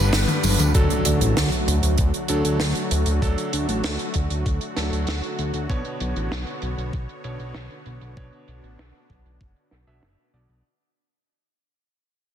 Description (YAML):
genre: synthwave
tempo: 97 BPM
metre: 4/4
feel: straight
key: B minor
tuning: A4 = 440 Hz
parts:
  - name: soft supersaw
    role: sustained chords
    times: 0.0-10.6 s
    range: D3 to C#5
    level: -29 LUFS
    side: equal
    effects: sidechain pumping
  - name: warm electric grand piano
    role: stabs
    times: 0.0-10.6 s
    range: G2 to E5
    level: -31 LUFS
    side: right 1 dB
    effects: low-pass filter, digital delay
  - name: fat analog bass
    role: bass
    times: 0.0-10.6 s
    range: F#1 to D2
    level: -23 LUFS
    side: equal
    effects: tube saturation
  - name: compact cocktail drum kit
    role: drums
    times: 0.1-10.6 s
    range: hi-hat, snare drum, tambourine, toms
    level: -26 LUFS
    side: equal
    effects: low-pass filter on hats, studio ambience, low-pass filter on toms, soft clipping on snare, low-pass filter on snare, low-pass filter on perc, low-pass filter on room
  - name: electronic kick drum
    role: drums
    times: 0.7-9.5 s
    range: none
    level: -23 LUFS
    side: equal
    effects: studio ambience
  - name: impact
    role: sound effects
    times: 0.7-3.2 s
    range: none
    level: -28 LUFS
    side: equal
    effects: none
room: light reverb, small room reverb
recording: dense, heavily limited modern master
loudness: -20 LUFS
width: side -9 dB against mid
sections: 0.7-10.6 A section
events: drum fill 0.3-0.7; fade-out 0.7-10.6; impact 0.7-3.2; filter sweep on drum 0.7-10.6; filter sweep on analog synth bass 0.7-10.6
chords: 0.0 G; 0.7 D; 5.7 Bmadd9